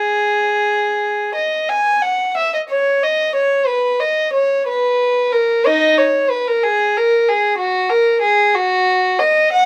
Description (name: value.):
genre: classical, baroque-style suite movement for unaccompanied violin.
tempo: 61 BPM (dotted quarters).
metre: 6/8.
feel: rubato.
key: G# minor.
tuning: A4 = 439 Hz.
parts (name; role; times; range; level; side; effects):
dark violin; solo; 0.0-9.7 s; D#4 to G#5; -16 LUFS; equal; none.
room: light reverb.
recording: none.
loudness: -16 LUFS.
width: mono.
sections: 0.0-1.7 A section; 1.7-9.7 B section.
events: none.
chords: none.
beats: 0.62 | 1.71 2.70 | 3.70 4.68 | 5.67 6.64 | 7.60 8.57 | 9.54.